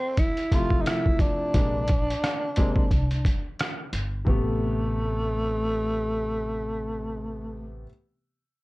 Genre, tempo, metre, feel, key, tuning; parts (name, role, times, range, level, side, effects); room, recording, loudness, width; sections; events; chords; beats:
hip hop, jazz-hop; 88 BPM; 4/4; swing 59% on 16ths; A minor; A4 = 440 Hz
growling tenor saxophone; melody; 0.0-7.8 s; A3 to F4; -28 LUFS; equal
lo-fi sampler-style drum kit; drums; 0.2-4.5 s; hi-hat, kick drum, rim click; -24 LUFS; equal; overdrive
warm upright piano; accompaniment; 0.5-7.9 s; C3 to G4; -31 LUFS; left 1 dB
upright bass; bass; 1.5-7.8 s; G1 to C2; -30 LUFS; equal
light reverb; dark, warm production; -23 LUFS; side -21 dB against mid
0.0-4.3 A section; 4.3-7.0 B section
0.0 Fmaj7; 1.5 Bb9; 4.3 Am9
0.17 0.85 | 1.54 2.22 2.90 3.58 | 4.26 4.95 5.63 6.31